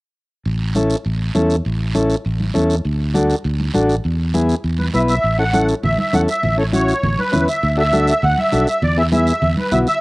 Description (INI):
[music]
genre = latin, cumbia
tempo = 201 BPM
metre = 4/4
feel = straight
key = A major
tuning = A4 = 440 Hz
[part]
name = fingered electric bass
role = bass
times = 0.5-9.8 s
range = A1 to E2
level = -19 LUFS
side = equal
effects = none
[part]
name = guiro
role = percussion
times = 0.5-10.0 s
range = none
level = -32 LUFS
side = right 5 dB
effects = none
[part]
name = combo organ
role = accompaniment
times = 0.8-9.9 s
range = B3 to B4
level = -19 LUFS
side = left 1 dB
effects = none
[part]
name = congas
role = percussion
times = 0.8-9.9 s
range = none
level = -24 LUFS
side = right 1 dB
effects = none
[part]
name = musette accordion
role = melody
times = 4.8-10.0 s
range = B4 to F#5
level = -18 LUFS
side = equal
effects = none
[sound]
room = light reverb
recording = home recording on cassette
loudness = -15 LUFS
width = side -23 dB against mid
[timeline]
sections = 0.5-5.2 A section; 5.2-10.0 B section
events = none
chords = 0.5 A; 2.8 D; 4.0 E; 5.2 A; 7.6 D; 8.8 E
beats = | 0.46 0.75 1.05 1.35 | 1.65 1.95 2.25 2.55 | 2.85 3.15 3.45 3.75 | 4.04 4.34 4.64 4.94 | 5.24 5.54 5.84 6.14 | 6.43 6.73 7.03 7.33 | 7.63 7.93 8.23 8.53 | 8.82 9.12 9.42 9.72